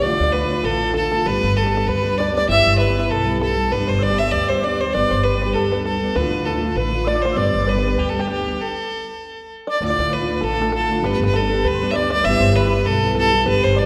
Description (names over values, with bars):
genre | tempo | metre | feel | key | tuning
celtic folk, Celtic reel | 197 BPM | 4/4 | swing 56% on 8ths | D dorian | A4 = 445 Hz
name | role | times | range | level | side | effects
rich fiddle | melody | 0.0-13.9 s | G4 to E5 | -23 LUFS | equal | none
mellow hollow tin whistle | second line | 0.0-13.9 s | G5 to E6 | -34 LUFS | equal | none
open-back banjo | second line | 0.0-13.9 s | G4 to E5 | -28 LUFS | equal | none
picked plugged-in steel-string acoustic guitar | accompaniment | 0.0-13.9 s | D2 to G4 | -25 LUFS | equal | none
upright bass | bass | 0.0-13.9 s | G1 to D2 | -25 LUFS | equal | none
room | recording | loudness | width
wet concert hall reverb, RT60 1.9 s | recorded in a church or concert hall | -19 LUFS | mono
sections
0.0-9.8 A section; 9.8-13.9 A section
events
stop 8.6-9.8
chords
0.0 Dm; 1.3 G; 2.5 Em/G; 3.7 G; 6.2 Dm; 7.4 G; 8.6 N.C.; 9.8 Dm; 11.0 G; 12.2 Em/G